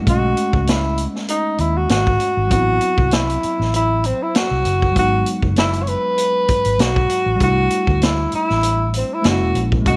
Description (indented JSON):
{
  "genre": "lush 1970s-style soul",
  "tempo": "98 BPM",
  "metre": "4/4",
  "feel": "swing 54% on 16ths",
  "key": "unclear",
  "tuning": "A4 = 440 Hz",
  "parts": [
    { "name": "tine electric piano", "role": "accompaniment", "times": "0.0-10.0 s", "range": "F#3 to D#5", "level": "-27 LUFS", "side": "equal", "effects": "none" },
    { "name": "breathy tenor saxophone", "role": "melody", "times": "0.1-10.0 s", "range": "C4 to C#5", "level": "-21 LUFS", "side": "equal", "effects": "none" },
    { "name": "vintage muted fingered electric bass", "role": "bass", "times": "0.1-10.0 s", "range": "E1 to D#2", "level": "-23 LUFS", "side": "equal", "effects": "none" },
    { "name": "vintage drum kit", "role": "drums", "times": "0.1-10.0 s", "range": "hi-hat, kick drum, snare drum", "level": "-23 LUFS", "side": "equal", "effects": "none" }
  ],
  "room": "light reverb, studio ambience",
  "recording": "none",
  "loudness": "-18 LUFS",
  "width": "mono",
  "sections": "0.0-10.0 A section",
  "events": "none",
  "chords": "0.1 B13 (rootless); 2.5 Am6; 5.0 F#sus4; 7.4 C69; 9.2 F#7"
}